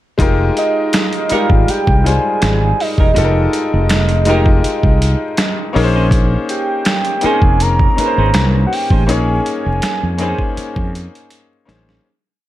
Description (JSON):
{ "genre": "R&B, neo-soul", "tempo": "81 BPM", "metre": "4/4", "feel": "swing 54% on 16ths", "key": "F minor", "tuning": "A4 = 444 Hz", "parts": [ { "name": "clear baby grand piano", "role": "accompaniment", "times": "0.2-12.1 s", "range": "G3 to Db5", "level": "-19 LUFS", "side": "left 4 dB", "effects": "none" }, { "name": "mellow fretless electric bass", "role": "bass", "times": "0.2-12.0 s", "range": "E1 to F2", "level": "-15 LUFS", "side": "equal", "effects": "none" }, { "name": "boom bap sampler-style drum kit", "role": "drums", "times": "0.2-12.0 s", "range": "finger snaps, hi-hat, kick drum, snare drum", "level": "-16 LUFS", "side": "equal", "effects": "none" }, { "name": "soft octave-layered synth lead", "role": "melody", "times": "0.6-11.3 s", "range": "Eb5 to Bb5", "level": "-19 LUFS", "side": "right 3 dB", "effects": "chorus" }, { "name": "semi-hollow electric guitar", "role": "second line", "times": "0.9-12.0 s", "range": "Ab3 to C5", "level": "-22 LUFS", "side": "right 5 dB", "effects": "wide subtle chorus" } ], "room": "light reverb", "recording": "vinyl crackle", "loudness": "-12 LUFS", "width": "side -14 dB against mid", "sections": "0.2-12.0 A section", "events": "fade-out 9.1-12.0; drum fill 11.3-12.0", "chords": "0.2 Fm11; 5.7 Bbm11", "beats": "| 0.19 0.93 1.67 2.41 | 3.15 3.89 4.63 5.37 | 6.11 6.86 7.60 8.34 | 9.08 9.82 10.56 11.30" }